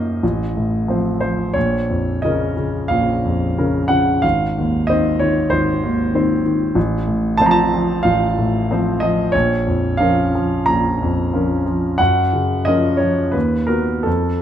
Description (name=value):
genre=classical, romantic character piece for solo piano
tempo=80-97 BPM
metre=4/4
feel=rubato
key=Bb minor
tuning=A4 = 441 Hz
part: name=warm grand piano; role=solo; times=0.0-14.4 s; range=Ab1 to Bb5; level=-15 LUFS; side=equal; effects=none
room=moderate recital hall reverb, RT60 1.6 s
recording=close, detailed microphones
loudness=-15 LUFS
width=side -10 dB against mid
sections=0.0-14.4 A section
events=none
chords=0.2 F7/A; 1.6 Bbm; 4.2 Ab; 6.8 F/A; 9.3 Bbm; 12.0 Gbmaj7; 13.3 B/D#